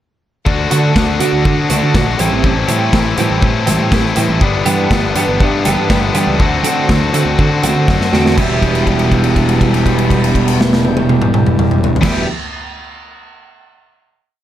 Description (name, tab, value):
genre	indie rock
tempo	121 BPM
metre	4/4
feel	straight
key	E minor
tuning	A4 = 440 Hz
part	biting overdriven guitar	riff	0.5-12.3 s	G2 to G4	-17 LUFS	left 6 dB	none
part	fuzz picked electric bass	bass	0.5-12.2 s	E1 to D3	-18 LUFS	equal	overdrive
part	big rock drum kit	drums	0.5-12.1 s	crash cymbal, hi-hat, kick drum, snare drum, toms	-16 LUFS	equal	none
part	twelve-string electric guitar	riff	0.7-12.3 s	E2 to G4	-16 LUFS	right 4 dB	ensemble chorus, slapback echo
part	percussive tonewheel organ	sustained chords	4.4-12.2 s	E4 to C6	-27 LUFS	left 1 dB	none
room	light reverb, small room ambience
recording	none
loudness	-11 LUFS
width	side -12 dB against mid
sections	0.5-8.4 pre-chorus; 8.4-12.3 final chord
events	drum fill 7.9-8.4; held note 8.4-12.0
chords	0.5 D; 2.2 Am7; 4.4 G6; 6.4 D7; 8.4 Em7